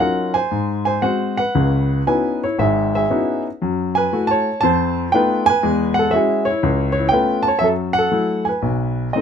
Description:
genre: solo jazz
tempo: 118 BPM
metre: 4/4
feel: swing 68% on 8ths, rubato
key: unclear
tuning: A4 = 436 Hz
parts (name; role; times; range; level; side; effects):
- warm baby grand piano; solo; 0.0-9.2 s; G#1 to A5; -16 LUFS; equal; none
room: light reverb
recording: close, detailed microphones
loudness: -16 LUFS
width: side -7 dB against mid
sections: 0.0-9.2 A section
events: none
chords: 0.0 D#m9; 0.5 G#7; 1.6 C#m11; 3.6 F#m7; 4.6 F7#11; 5.6 E69; 6.6 C#7alt; 7.6 F#m7; 8.6 B

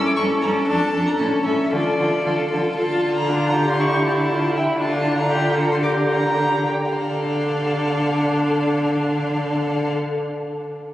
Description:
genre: quick classical-period movement for string quartet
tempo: 105-122 BPM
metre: 2/4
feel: rubato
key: D minor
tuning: A4 = 440 Hz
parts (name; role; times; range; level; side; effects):
- warm violin; melody; 0.0-9.9 s; D5 to D6; -26 LUFS; left 1 dB; none
- warm violin; second line; 0.0-9.9 s; E4 to Bb4; -25 LUFS; left 1 dB; none
- warm viola; accompaniment; 0.0-9.9 s; C#4 to G4; -22 LUFS; equal; none
- rich cello; bass; 0.2-9.9 s; F2 to D3; -23 LUFS; equal; none
room: wet church reverb, RT60 3.6 s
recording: recorded on a phone in the room, club reverb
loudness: -18 LUFS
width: side -14 dB against mid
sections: 0.0-2.8 A section; 2.8-6.9 B section; 6.9-9.2 C section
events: slowing down 4.3-6.9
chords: 0.0 A7/G; 0.7 Dm/F; 1.2 A; 1.7 Dm; 3.8 A5/D; 4.8 Dm; 5.8 Gm/D; 6.9 Dm

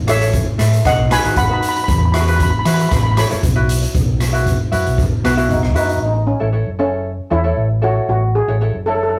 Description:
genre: calypso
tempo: 116 BPM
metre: 4/4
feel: straight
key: unclear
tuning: A4 = 440 Hz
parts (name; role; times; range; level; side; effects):
- fingered electric bass; bass; 0.0-9.2 s; F#1 to E3; -20 LUFS; equal; none
- steel pan; melody; 0.1-9.2 s; B3 to B5; -22 LUFS; equal; none
- ukulele; accompaniment; 0.1-9.2 s; D#4 to E5; -24 LUFS; equal; none
- street-band drum kit; drums; 0.1-6.0 s; hi-hat, kick drum, rim click; -21 LUFS; equal; none
room: moderate studio reverb, RT60 0.5 s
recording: rough rehearsal-room recording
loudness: -16 LUFS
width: mono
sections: 0.0-3.9 A section; 3.9-6.0 B section; 6.0-9.2 C section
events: none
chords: 0.0 A; 0.9 B; 1.9 Esus2; 2.9 A; 3.4 Bsus4; 6.0 A

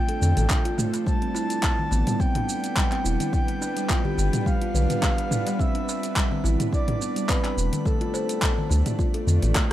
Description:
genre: organic downtempo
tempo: 106 BPM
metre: 4/4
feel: swing 55% on 16ths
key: A minor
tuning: A4 = 440 Hz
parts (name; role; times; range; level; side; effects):
- breathy flute-like synth lead; melody; 0.0-9.5 s; A4 to A5; -31 LUFS; equal; chorus, vintage 12-bit sampler grit, digital delay
- bowed-like drone; sustained chords; 0.0-9.7 s; F3 to D5; -36 LUFS; right 1 dB; built-in reverb, sidechain pumping
- kalimba; arpeggios; 0.0-9.6 s; G3 to C5; -29 LUFS; right 1 dB; digital delay
- deep house drum kit; drums; 0.1-9.7 s; handclaps, hi-hat, rim click, shaker, toms; -28 LUFS; equal; none
- round analog bass; bass; 0.2-9.5 s; E1 to F2; -21 LUFS; equal; none
- darbuka; percussion; 0.2-9.4 s; none; -34 LUFS; left 3 dB; none
- electronic kick drum; drums; 0.5-9.7 s; none; -25 LUFS; equal; none
- drifting glass-harmonics texture; texture; 1.9-9.7 s; B3 to B5; -40 LUFS; right 6 dB; chorus, built-in reverb
room: light reverb, digital ambience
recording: rough home demo mix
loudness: -21 LUFS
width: side -13 dB against mid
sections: 0.0-9.7 A section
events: drum fill 9.6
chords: 0.0 Dm7; 1.1 Am11; 3.3 G7; 5.6 Am11; 7.9 Dm

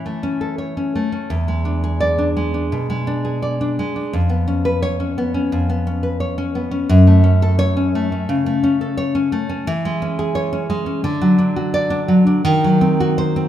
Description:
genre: romantic piece for solo classical guitar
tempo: 86 BPM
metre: 4/4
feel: rubato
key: unclear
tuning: A4 = 440 Hz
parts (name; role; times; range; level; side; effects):
- nylon-string guitar; solo; 0.0-13.5 s; E2 to D5; -16 LUFS; equal; none
room: moderate scoring stage reverb, RT60 1.9 s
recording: minimal, uncompressed stereo recording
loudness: -16 LUFS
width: side -11 dB against mid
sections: 0.0-13.5 A section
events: none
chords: 0.0 A; 1.3 E7; 4.1 C#7/E#; 6.9 F#m; 9.7 C#m/E; 11.0 D; 12.4 D#m6

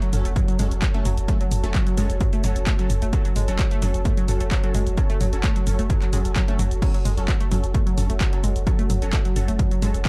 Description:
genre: driving peak-time techno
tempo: 130 BPM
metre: 4/4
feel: straight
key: F# minor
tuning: A4 = 440 Hz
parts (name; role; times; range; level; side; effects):
- analog pluck; riff; 0.0-10.1 s; F#3 to A3; -32 LUFS; equal; chorus, sidechain pumping, delay
- punchy analog drum machine; drums; 0.0-10.1 s; crash cymbal, handclaps, hi-hat, shaker, toms; -31 LUFS; equal; sidechain pumping on hats, sidechain pumping on cymbals, sidechain pumping on perc, sidechain pumping on toms
- warbly tape-like pad; texture; 0.0-10.1 s; F#4 to A5; -36 LUFS; equal; chorus, built-in reverb, sidechain pumping
- rave stab; stabs; 0.1-9.9 s; F#3 to A4; -36 LUFS; equal; chorus, built-in reverb, sidechain pumping, dub echo
- saturated sub bass; bass; 0.1-10.1 s; F#1; -26 LUFS; equal; overdrive, sidechain pumping, low-pass filter
- electronic kick drum; drums; 0.4-10.1 s; none; -24 LUFS; equal; none
room: digital ambience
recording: dark, warm production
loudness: -22 LUFS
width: mono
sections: 0.0-10.1 A section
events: none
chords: 0.0 F#m

